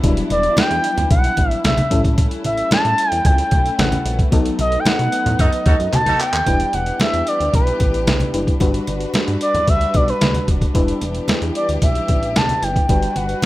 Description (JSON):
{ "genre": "early-eighties boogie funk", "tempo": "112 BPM", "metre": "4/4", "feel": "straight", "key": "E minor from 6.5 s", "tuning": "A4 = 444 Hz", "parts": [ { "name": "FM electric piano", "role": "accompaniment", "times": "0.0-13.5 s", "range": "F#3 to B4", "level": "-25 LUFS", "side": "left 3 dB", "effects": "chorus" }, { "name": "warm studio string section", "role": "sustained chords", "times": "0.0-13.5 s", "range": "E3 to B4", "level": "-29 LUFS", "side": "equal", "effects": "none" }, { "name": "chorused synth bass", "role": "bass", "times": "0.0-13.5 s", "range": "D#1 to B2", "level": "-22 LUFS", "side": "equal", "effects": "none" }, { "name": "boom bap sampler-style drum kit", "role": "drums", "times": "0.0-13.5 s", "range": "handclaps, hi-hat, kick drum, snare drum", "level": "-18 LUFS", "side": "equal", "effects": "none" }, { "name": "congas", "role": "percussion", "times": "0.0-13.5 s", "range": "none", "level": "-24 LUFS", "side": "equal", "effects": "none" }, { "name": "expressive portamento lead", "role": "melody", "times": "0.3-13.5 s", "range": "B4 to A5", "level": "-20 LUFS", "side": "equal", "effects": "chorus" }, { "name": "warm horn section", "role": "second line", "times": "5.4-6.4 s", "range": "D#4 to A4", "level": "-26 LUFS", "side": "right 1 dB", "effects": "none" } ], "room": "little or no reverb", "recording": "rough home demo mix", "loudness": "-15 LUFS", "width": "side -16 dB against mid", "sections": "0.0-6.5 A section; 6.5-13.5 B section", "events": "band accent 4.3-6.5; drum fill 5.9-6.5", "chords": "0.0 Em7; 1.9 A7; 4.3 B7; 6.5 Em7; 8.6 Gmaj7; 10.8 Em7; 12.9 Gmaj7" }